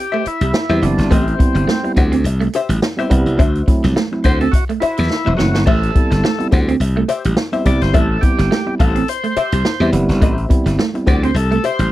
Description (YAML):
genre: funk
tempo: 105 BPM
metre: 4/4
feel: swing 56% on 16ths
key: A dorian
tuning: A4 = 438 Hz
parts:
  - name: overdriven tonewheel organ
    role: melody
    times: 0.0-11.9 s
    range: C4 to D5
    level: -22 LUFS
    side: left 1 dB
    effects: slow rotary speaker, tube saturation
  - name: tine electric piano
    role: stabs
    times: 0.0-11.4 s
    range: F#3 to E4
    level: -20 LUFS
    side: right 1 dB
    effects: none
  - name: vintage hollow-body jazz guitar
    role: accompaniment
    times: 0.1-11.8 s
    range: F#4 to F#5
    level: -23 LUFS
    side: left 5 dB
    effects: wah
  - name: clean electric guitar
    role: riff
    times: 0.1-11.9 s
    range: E3 to D4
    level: -22 LUFS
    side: right 6 dB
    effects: none
  - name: glassy slap bass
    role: bass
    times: 0.3-11.9 s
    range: E1 to E2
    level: -16 LUFS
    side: equal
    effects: none
  - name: swinging big-band drum kit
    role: drums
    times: 0.3-11.9 s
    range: crash cymbal, hi-hat, kick drum, snare drum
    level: -17 LUFS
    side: equal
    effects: none
room: little or no reverb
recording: dry, close 1970s-style studio recording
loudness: -13 LUFS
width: side -15 dB against mid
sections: 0.0-11.9 A section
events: tonewheel organ solo 0.0-11.9; drum fill 5.1-5.7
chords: 0.0 Am7; 3.4 D9; 5.7 Am7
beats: 0.54 | 1.11 1.68 2.25 2.82 | 3.39 3.96 4.53 5.10 | 5.67 6.24 6.80 7.37 | 7.94 8.51 9.08 9.65 | 10.22 10.79 11.36